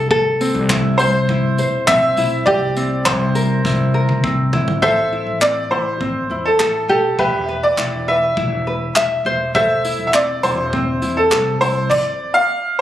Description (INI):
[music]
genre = acoustic pop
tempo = 102 BPM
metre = 4/4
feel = straight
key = unclear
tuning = A4 = 441 Hz
[part]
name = ukulele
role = accompaniment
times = 0.0-12.5 s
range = C4 to E5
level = -20 LUFS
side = left 1 dB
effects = none
[part]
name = upright bass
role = bass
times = 0.0-11.9 s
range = E1 to E2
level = -22 LUFS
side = equal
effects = none
[part]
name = natural country drum kit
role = drums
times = 0.1-12.0 s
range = crash cymbal, handclaps, kick drum, snare drum, tambourine, toms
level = -23 LUFS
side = equal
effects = none
[part]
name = bright upright piano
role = melody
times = 1.0-12.8 s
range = A4 to F5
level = -17 LUFS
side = equal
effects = none
[sound]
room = light reverb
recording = recorded on a phone in the room, club reverb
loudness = -15 LUFS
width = side -12 dB against mid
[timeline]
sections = 0.0-4.8 A section; 4.8-12.8 B section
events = drum fill 3.6-4.8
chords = 0.0 Am/C; 2.5 C7; 4.8 Am; 6.9 Em; 9.3 Am/E; 11.9 N.C.